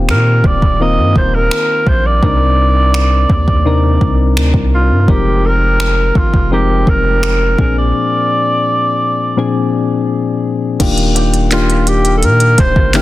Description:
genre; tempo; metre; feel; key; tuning
contemporary R&B; 84 BPM; 4/4; straight; Eb major; A4 = 440 Hz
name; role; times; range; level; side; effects
soft electric-piano-like synth keys; accompaniment; 0.0-13.0 s; Bb2 to Bb4; -16 LUFS; left 4 dB; chorus
long sustained 808-style bass; bass; 0.0-13.0 s; Eb1 to Bb2; -13 LUFS; equal; none
breathy alto saxophone; melody; 0.1-13.0 s; F4 to Eb5; -16 LUFS; right 1 dB; digital delay
smooth R&B drum kit; drums; 0.1-13.0 s; crash cymbal, finger snaps, handclaps, hi-hat, kick drum; -16 LUFS; equal; soft clipping on snare
bluegrass banjo; texture; 11.2-13.0 s; G4 to Bb4; -29 LUFS; right 1 dB; digital delay
room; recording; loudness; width
light reverb, digital ambience; dense, heavily limited modern master; -10 LUFS; side -16 dB against mid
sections
0.0-10.8 A section; 10.8-13.0 B section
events
break 7.9-10.8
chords
0.0 Eb6; 2.2 Cm9; 5.1 Fm11; 7.6 Bb9; 10.8 Ebmaj7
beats
0.08 0.80 1.51 | 2.23 2.94 3.65 4.37 | 5.08 5.80 6.51 7.22 | 7.94 8.65 9.37 10.08 | 10.80 11.51 12.22 12.94

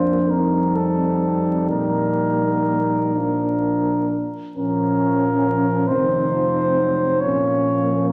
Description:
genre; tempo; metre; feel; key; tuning
classical, hymn-like piece for brass band; 41-47 BPM (dotted quarters); 6/8; rubato; Bb major, Bb minor from 4.6 s; A4 = 440 Hz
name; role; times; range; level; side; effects
dark cornet; melody; 0.0-8.1 s; A4 to Db5; -25 LUFS; equal; none
warm French horn section; second line; 0.0-8.1 s; Db4 to Eb4; -25 LUFS; equal; none
mellow euphonium; accompaniment; 0.0-8.1 s; Bb3 to Db4; -29 LUFS; equal; none
mellow tuba; bass; 0.0-8.1 s; F1 to F2; -27 LUFS; equal; none
bright trombone; accompaniment; 0.3-8.1 s; Eb3 to G3; -32 LUFS; equal; none
room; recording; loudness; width
wet recital hall reverb, RT60 1.6 s; vinyl crackle; -20 LUFS; mono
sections
0.0-4.6 A section; 4.6-8.1 B section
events
none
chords
0.3 F9; 1.7 Bb; 4.6 Bbm; 5.9 F5; 7.2 Bbm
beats
0.29 | 1.71 3.15 | 4.56 5.88 | 7.21

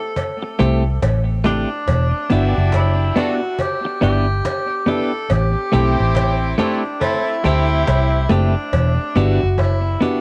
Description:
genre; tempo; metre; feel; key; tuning
roots reggae; 70 BPM; 4/4; swing 62% on 16ths; E minor; A4 = 440 Hz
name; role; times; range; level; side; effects
warm tenor saxophone; melody; 0.0-10.2 s; D4 to A4; -26 LUFS; equal; cassette tape, dub echo
cajon; drums; 0.0-10.2 s; none; -30 LUFS; equal; cassette tape
cowbell; percussion; 0.2-9.8 s; none; -28 LUFS; equal; none
clean electric guitar; accompaniment; 0.4-10.2 s; A3 to G4; -24 LUFS; equal; cassette tape, dub echo
warm upright piano; stabs; 0.6-10.2 s; E4 to D5; -29 LUFS; equal; cassette tape
vintage muted fingered electric bass; bass; 0.6-10.0 s; E1 to D2; -19 LUFS; equal; none
warm horn section; second line; 2.3-8.3 s; A3 to A4; -27 LUFS; equal; cassette tape, dub echo
room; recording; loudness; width
light reverb, studio reverb; home recording on cassette; -18 LUFS; mono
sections
0.0-10.2 A section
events
none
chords
0.0 Am7; 1.9 Em7; 5.3 Am7; 8.7 Em7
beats
0.16 1.02 | 1.87 2.73 3.59 4.44 | 5.30 6.16 7.01 7.87 | 8.73 9.59

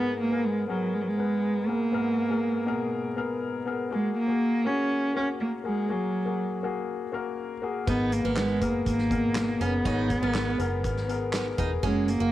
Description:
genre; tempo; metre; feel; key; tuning
piano-driven pop; 121 BPM; 4/4; straight; G# minor; A4 = 440 Hz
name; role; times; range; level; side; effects
warm cello; melody; 0.0-12.3 s; F#3 to C#4; -27 LUFS; right 1 dB; cassette tape
warm concert grand piano; accompaniment; 0.0-12.3 s; G#2 to C#5; -31 LUFS; left 5 dB; cassette tape
picked steel-string acoustic guitar; riff; 7.9-12.3 s; A#3 to D#4; -33 LUFS; right 7 dB; cassette tape
vintage muted fingered electric bass; bass; 7.9-12.3 s; E1 to G#1; -31 LUFS; right 1 dB; none
loose indie drum kit; drums; 7.9-12.2 s; handclaps, hi-hat, kick drum, snare drum; -33 LUFS; right 1 dB; none
room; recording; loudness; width
light reverb, studio ambience; home recording on cassette; -25 LUFS; side -14 dB against mid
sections
0.0-12.3 A section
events
none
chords
0.0 G#madd9; 3.9 F#add9; 7.9 G#madd9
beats
0.44 0.94 1.43 | 1.93 2.42 2.92 3.42 | 3.91 4.41 4.90 5.40 | 5.89 6.39 6.88 7.38 | 7.87 8.37 8.86 9.36 | 9.85 10.35 10.84 11.34 | 11.83

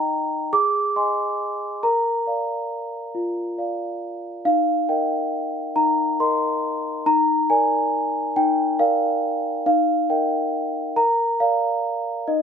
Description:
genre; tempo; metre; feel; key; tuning
classical, lullaby for celesta; 46 BPM (dotted quarters); 6/8; straight; unclear; A4 = 438 Hz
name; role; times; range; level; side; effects
large celesta; solo; 0.0-12.4 s; Eb4 to D6; -20 LUFS; equal; none
room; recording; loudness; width
light reverb; none; -19 LUFS; side -7 dB against mid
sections
0.0-12.4 A section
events
none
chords
0.0 Eb; 0.5 Ab; 1.8 Bb; 4.5 Eb; 7.1 Bb7/Eb; 9.7 Eb; 11.0 Bb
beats
0.53 | 1.83 3.14 | 4.45 5.76 | 7.06 8.36 | 9.66 10.97 | 12.28

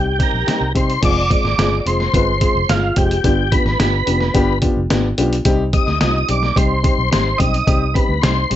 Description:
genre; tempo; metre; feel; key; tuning
uptempo 1960s-style soul; 108 BPM; 4/4; straight; C harmonic minor; A4 = 441 Hz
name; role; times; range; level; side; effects
tonewheel organ; melody; 0.0-8.6 s; F4 to Eb5; -20 LUFS; equal; chorus vibrato, slow rotary speaker
dark upright piano; accompaniment; 0.0-8.6 s; G3 to B4; -20 LUFS; left 2 dB; none
vintage muted fingered electric bass; bass; 0.0-8.6 s; F1 to C3; -20 LUFS; right 1 dB; none
lo-fi sampler-style drum kit; drums; 0.2-8.6 s; crash cymbal, hi-hat, kick drum, snare drum; -19 LUFS; equal; none
room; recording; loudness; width
little or no reverb; nothing above 7.9 kHz; -14 LUFS; side -12 dB against mid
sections
0.0-1.0 A section; 1.0-8.6 B section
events
none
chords
0.0 Cm; 1.0 Fm; 3.2 G7; 5.5 Cm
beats
0.47 | 1.03 1.58 2.14 2.69 | 3.24 3.80 4.35 4.90 | 5.46 6.01 6.56 7.12 | 7.67 8.22

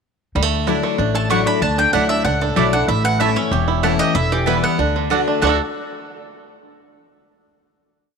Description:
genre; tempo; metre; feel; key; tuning
bluegrass; 189 BPM; 4/4; straight; D major; A4 = 440 Hz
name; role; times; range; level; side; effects
picked steel-string acoustic guitar; accompaniment; 0.4-5.6 s; E2 to F#4; -22 LUFS; left 12 dB; none
bluegrass banjo; arpeggios; 0.4-5.6 s; D3 to A4; -22 LUFS; right 9 dB; none
upright bass; bass; 0.4-5.6 s; E1 to D2; -22 LUFS; left 1 dB; none
mandolin; stabs; 0.7-5.6 s; A3 to A5; -25 LUFS; right 10 dB; none
mandolin; melody; 1.2-5.6 s; G4 to C#6; -21 LUFS; equal; none
room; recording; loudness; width
light reverb, small room ambience; 1960s-style stereo with parts hard left and right; -15 LUFS; side -5 dB against mid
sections
0.4-5.4 A section; 5.4-6.7 final chord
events
none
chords
0.4 Dadd9; 2.9 A; 4.2 Em; 4.8 D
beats
| 0.36 0.68 0.99 1.31 | 1.62 1.94 2.25 2.57 | 2.89 3.20 3.52 3.84 | 4.15 4.47 4.79 5.11 | 5.42

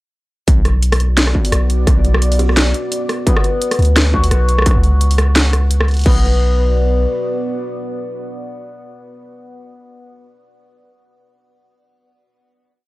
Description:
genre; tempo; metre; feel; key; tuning
half-time drum and bass; 172 BPM; 4/4; swing 56% on 16ths, half-time; B minor; A4 = 440 Hz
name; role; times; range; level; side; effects
deep dark ambient pad; sustained chords; 1.1-9.2 s; B3 to D5; -26 LUFS; right 1 dB; chorus, built-in reverb, vintage 12-bit sampler grit, sidechain pumping
long sustained 808-style bass; bass; 0.5-7.1 s; B1 to D2; -13 LUFS; equal; none
drum and bass drum kit; drums; 0.5-6.1 s; crash cymbal, hi-hat, rim click, snare drum; -18 LUFS; equal; overdrive
electronic kick drum; drums; 0.5-6.1 s; none; -14 LUFS; equal; distortion, overdrive
buzzing kalimba; melody; 2.4-2.7 s; F#4; -29 LUFS; left 1 dB; none
santur; arpeggios; 3.3-10.2 s; B3 to F#4; -22 LUFS; left 3 dB; tape echo
room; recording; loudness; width
little or no reverb; dry, gritty hardware recording, cassette tape; -12 LUFS; side -20 dB against mid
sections
0.5-6.1 drop; 6.1-8.8 final chord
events
drop 0.5-6.1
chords
0.5 Bm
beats
| 0.47 0.82 1.17 1.52 | 1.87 2.22 2.57 2.92 | 3.27 3.62 3.96 4.31 | 4.66 5.01 5.36 5.71 | 6.06 6.41 6.75 7.10 | 7.45 7.80 8.15 8.50

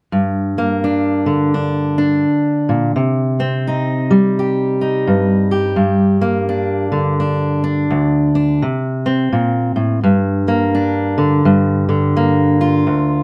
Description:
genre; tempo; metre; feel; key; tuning
folk; 85 BPM; 4/4; swing 61% on 8ths; G minor; A4 = 440 Hz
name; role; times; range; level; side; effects
fingerpicked steel-string acoustic guitar; solo; 0.1-13.2 s; D2 to G4; -16 LUFS; equal; none
room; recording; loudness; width
moderate studio reverb, RT60 0.8 s; none; -16 LUFS; mono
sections
0.1-11.4 A section; 11.4-13.2 B section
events
none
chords
0.1 Gm; 2.9 Cm; 5.8 Gm; 8.6 Am; 10.0 Gm; 11.4 Gm7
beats
| 0.11 0.82 1.53 2.24 | 2.95 3.66 4.37 5.07 | 5.78 6.49 7.20 7.91 | 8.61 9.32 10.03 10.74 | 11.44 12.15 12.86

